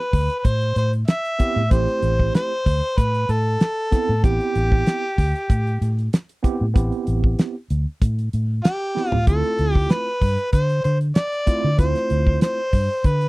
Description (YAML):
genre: straight-eighth soul blues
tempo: 95 BPM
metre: 4/4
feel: straight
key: A minor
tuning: A4 = 440 Hz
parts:
  - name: clear harmonica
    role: melody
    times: 0.0-13.3 s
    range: G4 to E5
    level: -23 LUFS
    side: equal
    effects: overdrive
  - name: vintage muted fingered electric bass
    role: bass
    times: 0.1-13.3 s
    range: A1 to D3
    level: -20 LUFS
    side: equal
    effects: none
  - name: damped 70s drum kit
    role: drums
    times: 0.1-13.3 s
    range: hi-hat, kick drum, snare drum, toms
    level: -18 LUFS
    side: equal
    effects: none
  - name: tine electric piano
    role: accompaniment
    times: 1.4-12.6 s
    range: A3 to A4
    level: -26 LUFS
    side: right 4 dB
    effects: medium stereo tremolo
room: little or no reverb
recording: dry, close 1970s-style studio recording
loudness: -18 LUFS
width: side -21 dB against mid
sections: 0.0-13.3 A section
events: drum fill 9.0-9.3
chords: 0.0 Am7; 9.3 Dm7